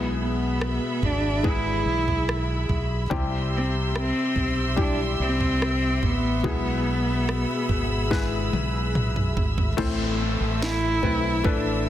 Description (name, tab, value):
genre	pop ballad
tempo	72 BPM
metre	4/4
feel	straight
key	A minor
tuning	A4 = 440 Hz
part	warm cello	melody	0.0-11.9 s	B3 to E4	-26 LUFS	right 1 dB	ping-pong delay
part	felt-muted upright piano	accompaniment	0.0-11.9 s	A2 to C5	-30 LUFS	left 5 dB	none
part	warm studio string section	sustained chords	0.0-11.9 s	G4 to E6	-32 LUFS	equal	none
part	mellow fretless electric bass	bass	0.0-11.9 s	G#1 to C2	-27 LUFS	equal	none
part	house drum kit	drums	0.6-11.6 s	crash cymbal, kick drum, rim click, snare drum, toms	-28 LUFS	right 1 dB	soft clipping on snare
part	downlifter	sound effects	9.8-11.9 s	none	-34 LUFS	right 1 dB	none
room	small room reverb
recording	dense, heavily limited modern master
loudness	-22 LUFS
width	side -12 dB against mid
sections	0.0-9.8 A section; 9.8-11.9 B section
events	drum fill 8.1-9.8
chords	0.0 E; 3.1 C; 6.4 E; 9.8 Am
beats	0.61 1.44 2.28 | 3.11 3.94 4.78 5.61 | 6.44 7.28 8.11 8.94 | 9.78 10.61 11.44